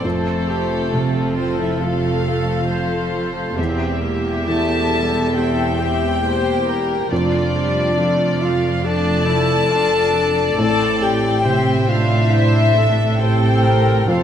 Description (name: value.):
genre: cinematic.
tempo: 68 BPM.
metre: 4/4.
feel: rubato.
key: unclear.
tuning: A4 = 440 Hz.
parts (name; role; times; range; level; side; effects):
warm French horn; melody; 0.0-14.2 s; A3 to A4; -23 LUFS; left 4 dB; none.
warm studio violin section; melody; 0.0-14.2 s; A4 to E5; -26 LUFS; left 4 dB; none.
warm chamber violin section; second line; 0.0-14.2 s; A4 to A5; -24 LUFS; left 2 dB; none.
felt-muted upright piano; accompaniment; 0.0-14.2 s; E2 to F3; -24 LUFS; equal; none.
rich studio viola section; accompaniment; 0.0-14.2 s; G3 to C5; -24 LUFS; right 2 dB; none.
dark studio cello section; bass; 0.0-14.2 s; E2 to A2; -23 LUFS; right 1 dB; none.
dark studio double bass section; bass; 0.0-14.2 s; E1 to A1; -24 LUFS; right 3 dB; none.
room: moderate recital hall reverb, RT60 1.7 s.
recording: none.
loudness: -15 LUFS.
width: side -9 dB against mid.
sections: 0.0-14.2 A section.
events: none.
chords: 0.0 F; 3.6 Edim; 7.1 Dm/F; 10.6 Am.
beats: | 0.04 0.93 1.81 2.70 | 3.58 4.46 5.34 6.23 | 7.11 7.98 8.85 9.72 | 10.58 11.45 12.33 13.20 | 14.09.